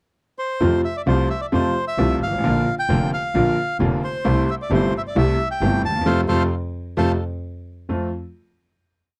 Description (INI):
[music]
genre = tango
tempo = 132 BPM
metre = 4/4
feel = rubato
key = F major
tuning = A4 = 440 Hz
[part]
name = bandoneon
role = melody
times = 0.4-7.1 s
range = A4 to A5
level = -27 LUFS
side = equal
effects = slapback echo
[part]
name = bright concert grand piano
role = accompaniment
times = 0.6-8.1 s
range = F1 to F4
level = -23 LUFS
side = equal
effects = none
[part]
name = clear double bass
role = bass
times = 0.6-8.1 s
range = F1 to F2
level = -26 LUFS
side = equal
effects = none
[sound]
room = little or no reverb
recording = dry, close 1970s-style studio recording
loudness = -21 LUFS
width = mono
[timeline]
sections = 0.0-0.6 pickup bar; 0.6-7.9 A section; 7.9-9.2 final chord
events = band accent 6.1-7.9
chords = 0.0 N.C.; 0.6 F; 2.4 Bb; 4.3 C6; 6.1 F; 7.4 N.C.; 7.9 F